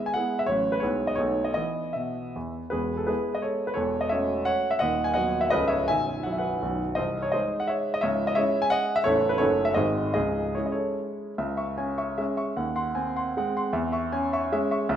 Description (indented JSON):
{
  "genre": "classical, romantic triple-time dance for piano with dotted rhythms",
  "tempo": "139-188 BPM",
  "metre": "3/4",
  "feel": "rubato",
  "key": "E major, C# minor from 7.0 s",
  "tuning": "A4 = 439 Hz",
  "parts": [
    { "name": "clear grand piano", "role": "solo", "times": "0.0-15.0 s", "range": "A0 to C#6", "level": "-24 LUFS", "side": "equal", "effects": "none" }
  ],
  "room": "wet recital hall reverb, RT60 1.7 s",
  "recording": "none",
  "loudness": "-24 LUFS",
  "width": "side -9 dB against mid",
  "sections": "0.0-2.7 A section; 2.7-11.4 A section; 11.4-15.0 B section",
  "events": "none",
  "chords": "0.5 F#m/A; 0.8 E/B; 1.2 B7; 1.6 E5; 2.7 E; 3.8 F#m7/E; 4.8 B/D#; 5.5 A/C#; 5.9 Bsus4; 6.6 B; 7.0 G#/B#; 8.0 C#m; 9.1 A; 9.4 D#m7b5/F#; 9.8 G#7; 10.2 C#m; 12.6 G#7/D#; 13.7 C#m/E"
}